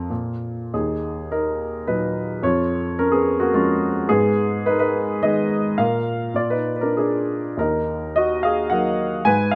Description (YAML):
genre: classical, lyrical solo piano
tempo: 92-111 BPM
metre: 3/4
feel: rubato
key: Eb minor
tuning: A4 = 440 Hz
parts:
  - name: warm baby grand piano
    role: solo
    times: 0.0-9.6 s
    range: Eb2 to Ab5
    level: -21 LUFS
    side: equal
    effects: none
room: light reverb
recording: close, detailed microphones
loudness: -21 LUFS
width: mono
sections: 0.7-9.6 A section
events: none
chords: 0.1 N.C.; 0.7 Ebm; 2.4 Db/F; 4.1 Abm; 5.8 N.C.; 6.4 Bb; 7.6 Ebm